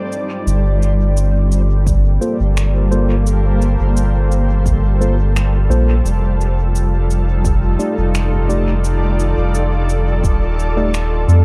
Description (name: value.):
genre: ambient dub.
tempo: 86 BPM.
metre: 4/4.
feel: swing 54% on 16ths.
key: G minor.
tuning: A4 = 439 Hz.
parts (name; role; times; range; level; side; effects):
granular cloud pad; sustained chords; 0.0-11.4 s; G3 to D5; -24 LUFS; equal; built-in reverb.
backwards swelling texture; texture; 0.0-0.5 s; C4 to C5; -35 LUFS; equal; built-in reverb.
electronic shaker and finger snaps; drums; 0.1-11.4 s; none; -33 LUFS; equal; dub echo.
round analog bass; bass; 0.5-11.4 s; Eb1 to F2; -17 LUFS; equal; tube saturation.
electronic kick drum; drums; 1.9-10.4 s; none; -21 LUFS; equal; none.
mellow tine electric piano; stabs; 2.2-10.9 s; A3 to D5; -26 LUFS; equal; dub echo.
room: little or no reverb.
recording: echo-heavy mix.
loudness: -16 LUFS.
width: mono.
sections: 0.5-11.4 A section.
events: break 0.0-0.5.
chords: 0.5 Gm11; 6.1 F13.